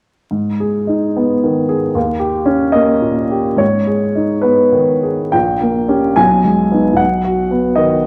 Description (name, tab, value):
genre	classical, romantic character piece for solo piano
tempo	72 BPM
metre	2/4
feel	uneven beats, rubato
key	G# minor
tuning	A4 = 440 Hz
part	warm upright piano	solo	0.3-8.1 s	Bb1 to G#5	-14 LUFS	equal	none
room	wet recital hall reverb, RT60 1.5 s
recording	dark, warm production, vinyl crackle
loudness	-15 LUFS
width	mono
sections	0.3-3.6 A section; 3.6-8.1 B section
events	none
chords	0.3 G#m; 2.0 D#7; 3.6 G#m; 5.3 Gdim/Bb; 6.2 G#m/B; 7.0 B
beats	| 0.31 1.17 | 1.96 2.75 | 3.60 4.44 | 5.34 6.18 | 6.99 7.79